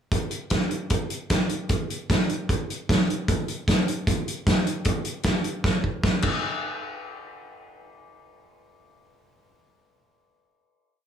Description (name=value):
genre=rock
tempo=152 BPM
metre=4/4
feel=straight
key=none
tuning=none
part: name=loose indie drum kit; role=drums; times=0.1-6.3 s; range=crash cymbal, hi-hat, kick drum, snare drum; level=-23 LUFS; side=equal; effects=none
room=moderate studio reverb, RT60 0.7 s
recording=none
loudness=-23 LUFS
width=side -8 dB against mid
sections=0.1-6.4 interlude; 6.4-9.6 final hit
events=drum fill 5.7-6.4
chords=none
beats=| 0.12 0.52 0.91 1.31 | 1.70 2.10 2.49 2.89 | 3.28 3.68 4.07 4.47 | 4.86 5.25 5.65 6.04